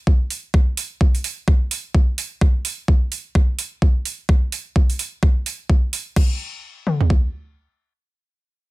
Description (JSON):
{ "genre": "bass house", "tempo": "128 BPM", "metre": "4/4", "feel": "swing 59% on 16ths", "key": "none", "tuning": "none", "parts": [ { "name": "garage drum kit", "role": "drums", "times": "0.1-7.2 s", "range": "kick drum, toms", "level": "-15 LUFS", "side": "equal", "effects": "overdrive, studio ambience" }, { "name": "garage drum kit", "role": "drums", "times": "0.3-6.3 s", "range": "crash cymbal, hi-hat", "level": "-26 LUFS", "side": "right 5 dB", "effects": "overdrive, studio ambience" } ], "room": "digital ambience", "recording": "none", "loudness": "-18 LUFS", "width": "side -22 dB against mid", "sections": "0.0-6.2 A section; 6.2-8.7 B section", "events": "none", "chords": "none" }